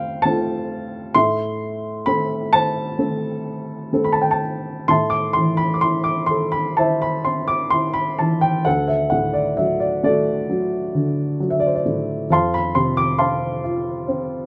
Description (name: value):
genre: classical, lyrical solo piano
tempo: 65 BPM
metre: 4/4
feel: rubato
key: A minor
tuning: A4 = 437 Hz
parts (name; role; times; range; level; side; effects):
- dark upright piano; solo; 0.0-14.5 s; D2 to D6; -20 LUFS; equal; none
room: light reverb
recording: close, detailed microphones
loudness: -20 LUFS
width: mono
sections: 0.0-4.9 A section; 4.9-14.5 B section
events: none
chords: 0.0 F; 1.2 Am; 8.7 D; 12.3 F